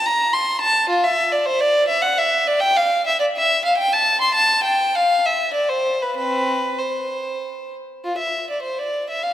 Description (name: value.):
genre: classical, baroque-style suite movement for unaccompanied violin.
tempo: 93-107 BPM.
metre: 3/4.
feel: rubato.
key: C major.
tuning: A4 = 442 Hz.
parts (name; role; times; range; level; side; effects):
rich violin; solo; 0.0-9.3 s; C4 to C6; -17 LUFS; equal; none.
room: wet church reverb, RT60 2.9 s.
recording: none.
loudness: -17 LUFS.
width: side -12 dB against mid.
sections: 0.0-8.0 A section; 8.0-9.3 A section.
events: none.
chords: none.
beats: 0.34 | 0.91 1.47 2.04 | 2.62 3.20 3.78 | 4.36 4.94 5.53 | 6.15 6.78 7.40 | 8.04 8.65 9.23.